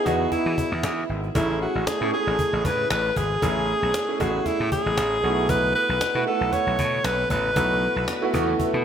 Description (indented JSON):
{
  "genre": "1980s-style pop",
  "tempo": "116 BPM",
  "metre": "4/4",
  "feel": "swing 55% on 16ths",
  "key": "unclear",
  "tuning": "A4 = 440 Hz",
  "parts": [
    { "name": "bright alto saxophone", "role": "melody", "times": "0.0-8.3 s", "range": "E4 to C#5", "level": "-24 LUFS", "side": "equal", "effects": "digital delay" },
    { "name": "clear concert grand piano", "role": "accompaniment", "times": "0.0-8.8 s", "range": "A3 to D#5", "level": "-26 LUFS", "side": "right 2 dB", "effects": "lush chorus" },
    { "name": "gritty slap bass", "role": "bass", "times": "0.1-8.8 s", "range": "G#1 to E3", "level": "-27 LUFS", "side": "left 1 dB", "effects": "overdrive" },
    { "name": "cajon", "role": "drums", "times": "0.1-8.8 s", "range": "none", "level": "-30 LUFS", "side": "left 1 dB", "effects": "none" }
  ],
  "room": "wet lush hall reverb, RT60 2.0 s",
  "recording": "bright 1980s-style digital production",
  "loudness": "-21 LUFS",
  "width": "side -8 dB against mid",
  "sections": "0.0-8.8 A section",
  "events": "none",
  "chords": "0.0 Emaj7; 1.4 Amaj7; 5.2 B7sus4"
}